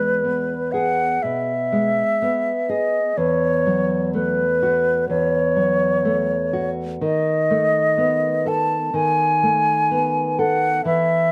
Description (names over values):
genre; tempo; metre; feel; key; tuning
romantic duo for flute and classical guitar; 62 BPM; 4/4; rubato; unclear; A4 = 441 Hz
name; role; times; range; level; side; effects
mellow silver concert flute; melody; 0.0-11.3 s; B4 to A5; -22 LUFS; equal; none
nylon-string guitar; accompaniment; 0.0-11.3 s; E2 to A4; -25 LUFS; equal; slapback echo
room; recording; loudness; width
little or no reverb; recorded outdoors, with no room sound; -20 LUFS; mono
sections
0.0-11.3 A section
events
none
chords
0.0 E; 3.2 F#m7/E; 7.0 B7/D#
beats
0.23 1.22 2.21 | 3.17 4.14 5.10 6.05 | 7.02 7.97 8.93 9.90 | 10.85